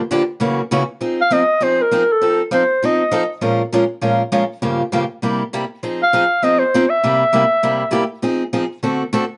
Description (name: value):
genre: jazz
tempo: 200 BPM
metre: 4/4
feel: swing 59% on 8ths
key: F minor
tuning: A4 = 440 Hz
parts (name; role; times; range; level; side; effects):
- picked steel-string acoustic guitar; accompaniment; 0.1-9.2 s; Gb2 to Bb4; -20 LUFS; equal; none
- mellow clarinet; melody; 1.2-3.3, 6.0-8.1 s; A4 to F5; -17 LUFS; equal; plate reverb
room: moderate studio ambience, RT60 0.5 s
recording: nothing above 10.9 kHz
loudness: -17 LUFS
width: mono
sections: 0.0-1.0 A section; 1.0-9.4 B section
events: none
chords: 0.4 Gb7; 1.0 Fm7; 2.2 F7; 3.4 Bbm7; 4.6 Gm7b5; 5.2 C7; 5.8 Fm7; 7.0 C7; 8.2 Fm7; 8.8 D7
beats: 0.11 0.41 0.71 | 1.01 1.31 1.61 1.91 | 2.21 2.51 2.81 3.12 | 3.42 3.72 4.02 4.32 | 4.62 4.92 5.22 5.52 | 5.82 6.12 6.42 6.72 | 7.03 7.33 7.63 7.93 | 8.23 8.53 8.83 9.13